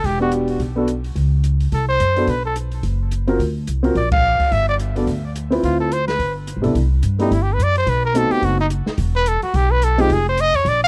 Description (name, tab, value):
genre	jazz, small-group swing and bop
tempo	215 BPM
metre	4/4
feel	swing 58% on 8ths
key	G major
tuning	A4 = 440 Hz
part	bright trumpet	melody	0.0-10.9 s	Eb4 to E#5	-22 LUFS	equal	tape echo
part	upright bass	bass	0.0-10.9 s	E1 to G2	-22 LUFS	equal	none
part	open jazz drum kit	drums	0.0-10.7 s	hi-hat, kick drum, ride cymbal, snare drum	-29 LUFS	equal	none
part	warm baby grand piano	accompaniment	0.2-10.1 s	C3 to B4	-22 LUFS	equal	none
room	little or no reverb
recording	dry, close 1970s-style studio recording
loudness	-19 LUFS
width	mono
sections	0.0-6.8 A section; 6.8-10.9 B section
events	band accent 4.1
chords	0.0 Em9; 1.2 N.C.; 1.7 Csus2; 2.3 B5; 3.4 Dm7b13; 4.5 G; 5.6 Dm7; 6.2 G; 6.8 C5; 7.9 B7b9; 9.0 Em; 10.1 Fm7